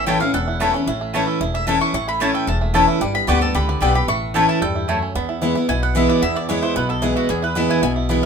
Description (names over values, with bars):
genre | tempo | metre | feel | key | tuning
bluegrass | 224 BPM | 4/4 | straight | A mixolydian | A4 = 442 Hz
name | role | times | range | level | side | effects
bluegrass banjo | melody | 0.0-8.3 s | A3 to A4 | -26 LUFS | right 6 dB | none
mandolin | melody | 0.0-8.3 s | F#4 to C#6 | -24 LUFS | equal | none
picked steel-string acoustic guitar | accompaniment | 0.0-8.3 s | E2 to G4 | -20 LUFS | equal | none
upright bass | bass | 0.0-8.2 s | E1 to E2 | -24 LUFS | left 1 dB | none
mandolin | stabs | 0.1-5.0 s | A3 to A5 | -20 LUFS | left 3 dB | none
room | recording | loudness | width
moderate studio reverb, RT60 0.7 s | minimal, uncompressed stereo recording | -16 LUFS | side -6 dB against mid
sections
0.0-5.2 A section; 5.2-8.3 B section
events
none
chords
0.0 A; 3.0 G; 4.1 A; 5.2 E